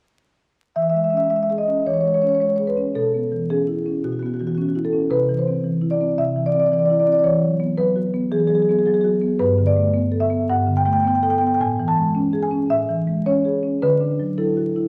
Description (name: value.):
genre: classical, contemporary piece for solo marimba.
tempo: 110 BPM.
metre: 4/4.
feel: rubato.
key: E major.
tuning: A4 = 442 Hz.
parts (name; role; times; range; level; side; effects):
marimba with medium mallets; solo; 0.8-14.9 s; G2 to A5; -20 LUFS; equal; none.
room: wet recital hall reverb, RT60 1.3 s.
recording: vinyl crackle.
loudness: -20 LUFS.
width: mono.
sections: 0.7-14.9 A section.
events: none.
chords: 0.7 E6; 2.9 B9sus4; 5.1 Cadd9; 7.2 Eadd9; 9.4 Gadd9; 11.6 Amaj7; 13.8 Dadd9.